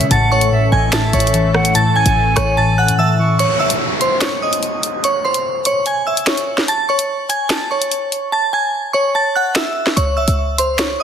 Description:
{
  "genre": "hip hop, drill",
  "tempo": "146 BPM",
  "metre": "4/4",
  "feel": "half-time",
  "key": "unclear",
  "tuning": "A4 = 440 Hz",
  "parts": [
    { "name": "silver concert flute", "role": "second line", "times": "0.0-3.4 s", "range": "D#5 to C#6", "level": "-21 LUFS", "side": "right 3 dB", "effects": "digital delay" },
    { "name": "muted felt-like synth keys", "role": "accompaniment", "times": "0.0-3.4 s", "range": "A2 to G#3", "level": "-17 LUFS", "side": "left 2 dB", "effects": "chorus" },
    { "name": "sweeping resonant pad", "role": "sustained chords", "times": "0.0-3.4 s", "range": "E3 to A4", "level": "-24 LUFS", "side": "equal", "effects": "chorus" },
    { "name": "short 808-style bass", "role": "bass", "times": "0.0-3.0, 10.0-11.0 s", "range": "G#1 to C#3", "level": "-20 LUFS", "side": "equal", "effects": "none" },
    { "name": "drill drum kit", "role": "drums", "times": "0.0-10.9 s", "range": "finger snaps, hi-hat, rim click, snare drum", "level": "-18 LUFS", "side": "equal", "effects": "none" },
    { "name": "glassy synth bell", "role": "melody", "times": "0.1-11.0 s", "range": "B#4 to A6", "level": "-16 LUFS", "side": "right 1 dB", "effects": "chorus, digital delay" },
    { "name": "downlifter", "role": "sound effects", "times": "3.4-6.7 s", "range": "none", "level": "-24 LUFS", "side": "right 1 dB", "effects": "none" }
  ],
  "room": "light reverb, digital ambience",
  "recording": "dense, heavily limited modern master",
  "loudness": "-13 LUFS",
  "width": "side -8 dB against mid",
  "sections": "0.0-3.4 A section; 3.4-11.0 B section",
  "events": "drums muted 3.0-3.4; break 3.4-10.0; hi-hats muted 8.3-10.0",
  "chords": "0.1 A; 3.4 N.C.; 6.7 A; 10.0 C#m"
}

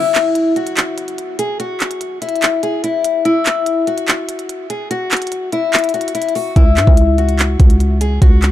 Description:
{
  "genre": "hip hop, trap",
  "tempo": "145 BPM",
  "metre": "4/4",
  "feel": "half-time",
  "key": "C# minor",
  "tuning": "A4 = 439 Hz",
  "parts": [
    { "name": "picked old ladder-braced acoustic guitar", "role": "melody", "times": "0.0-8.5 s", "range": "E4 to G#4", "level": "-17 LUFS", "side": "left 3 dB", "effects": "low-pass filter, ping-pong delay" },
    { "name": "trap drum kit", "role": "drums", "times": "0.1-8.5 s", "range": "handclaps, hi-hat, kick drum", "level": "-14 LUFS", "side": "equal", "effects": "none" },
    { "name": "growling 808-style bass", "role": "bass", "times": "6.6-8.5 s", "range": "C#2 to G#2", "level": "-13 LUFS", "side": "equal", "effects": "none" }
  ],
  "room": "little or no reverb",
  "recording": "dark, warm production",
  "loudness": "-13 LUFS",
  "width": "side -13 dB against mid",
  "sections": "0.0-8.5 A section",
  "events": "break 0.0-6.6",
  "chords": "0.0 N.C.; 6.6 C#m"
}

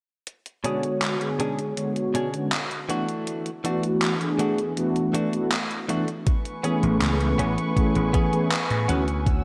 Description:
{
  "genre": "vaporwave",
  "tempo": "80 BPM",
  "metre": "4/4",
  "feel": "straight",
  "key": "B dorian",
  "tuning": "A4 = 442 Hz",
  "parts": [
    { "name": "gated 80s digital drum machine", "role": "drums", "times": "0.3-9.4 s", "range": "handclaps, hi-hat", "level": "-32 LUFS", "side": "equal", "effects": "gated reverb, overdrive" },
    { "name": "mellow synth brass", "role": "accompaniment", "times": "0.6-9.1 s", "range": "D3 to C#5", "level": "-27 LUFS", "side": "equal", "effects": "subtle chorus, analog delay" },
    { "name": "direct-recorded clean electric guitar", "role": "riff", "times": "0.6-9.1 s", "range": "B2 to B4", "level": "-34 LUFS", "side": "equal", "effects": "subtle chorus, low-pass filter, analog delay" },
    { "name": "muted chamber string section", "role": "sustained chords", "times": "6.3-9.4 s", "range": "B4 to E6", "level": "-34 LUFS", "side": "equal", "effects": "none" },
    { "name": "electronic kick drum", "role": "drums", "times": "6.3-9.4 s", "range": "none", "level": "-24 LUFS", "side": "equal", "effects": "overdrive" },
    { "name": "vintage slap bass", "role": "bass", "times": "6.8-9.4 s", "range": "A1 to A2", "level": "-27 LUFS", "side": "equal", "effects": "none" }
  ],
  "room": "wet lush hall reverb, RT60 2.8 s",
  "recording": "none",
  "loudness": "-24 LUFS",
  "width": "mono",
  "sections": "0.3-9.4 A section",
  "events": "none",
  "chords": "0.3 Bm69; 2.9 E9sus4; 6.3 Amaj9"
}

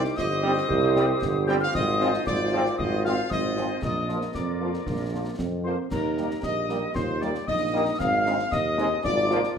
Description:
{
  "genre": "military-style march for wind band",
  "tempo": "115 BPM",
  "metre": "2/4",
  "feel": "straight",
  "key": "Eb major",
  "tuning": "A4 = 442 Hz",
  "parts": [
    { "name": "dark euphonium", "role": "second line", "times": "0.0-9.6 s", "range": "Bb3 to G4", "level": "-32 LUFS", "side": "right 6 dB", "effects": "none" },
    { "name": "warm woodwind section", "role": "second line", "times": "0.0-9.5 s", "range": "F4 to F5", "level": "-30 LUFS", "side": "left 2 dB", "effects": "none" },
    { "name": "wooden piccolo", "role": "second line", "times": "0.0-9.5 s", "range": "Bb5 to G6", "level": "-32 LUFS", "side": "left 5 dB", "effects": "none" },
    { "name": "warm tuba", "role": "bass", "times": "0.0-9.5 s", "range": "G1 to F2", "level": "-28 LUFS", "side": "right 2 dB", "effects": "none" },
    { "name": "concert snare drum, concert bass drum and clash cymbals", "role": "drums", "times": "0.0-9.6 s", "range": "none", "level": "-35 LUFS", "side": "left 1 dB", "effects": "none" },
    { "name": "mellow trumpet section", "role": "melody", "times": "0.2-9.5 s", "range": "Bb4 to G5", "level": "-32 LUFS", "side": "equal", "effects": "none" },
    { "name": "mellow French horn section", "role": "accompaniment", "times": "0.4-9.4 s", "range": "F3 to G4", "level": "-33 LUFS", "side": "left 3 dB", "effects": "none" },
    { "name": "mellow trombone section", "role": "sustained chords", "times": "0.4-9.4 s", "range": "F3 to C4", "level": "-32 LUFS", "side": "right 2 dB", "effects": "none" }
  ],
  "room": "moderate large studio reverb, RT60 1.2 s",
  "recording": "minimal, uncompressed stereo recording",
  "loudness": "-23 LUFS",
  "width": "side -7 dB against mid",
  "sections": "0.0-5.9 A section; 5.9-9.6 B section",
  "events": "none",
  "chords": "0.0 Cm; 1.7 Fm7/Ab; 3.8 Bb; 5.9 Eb; 8.0 Ab; 9.0 Bb7/Ab"
}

